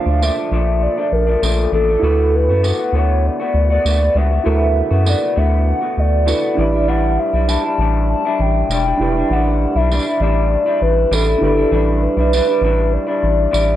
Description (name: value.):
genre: indie pop, bedroom pop.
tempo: 99 BPM.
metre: 4/4.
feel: straight.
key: D major.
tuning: A4 = 441 Hz.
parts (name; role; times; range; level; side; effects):
hollow clarinet-like synth lead; melody; 0.0-13.8 s; A4 to A5; -19 LUFS; equal; wide subtle chorus.
electric guitar through a small old amp; accompaniment; 0.0-13.8 s; A2 to F#4; -21 LUFS; left 4 dB; lush chorus, vibrato effect.
reed electric piano; accompaniment; 0.0-13.8 s; D4 to A5; -24 LUFS; right 4 dB; cassette tape.
round analog bass; bass; 0.1-13.8 s; E1 to F#2; -16 LUFS; equal; none.
tambourine; percussion; 0.2-13.7 s; none; -26 LUFS; right 6 dB; none.
room: moderate studio reverb, RT60 0.5 s.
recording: cassette tape.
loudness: -14 LUFS.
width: side -12 dB against mid.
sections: 0.0-13.8 A section.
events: none.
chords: 0.0 Bbmaj7; 2.0 D6; 6.6 A7sus4.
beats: 0.22 0.82 1.43 | 2.03 2.64 3.24 3.85 | 4.46 5.06 5.67 6.27 | 6.88 7.48 8.09 8.69 | 9.30 9.90 10.51 11.11 | 11.72 12.32 12.92 13.53.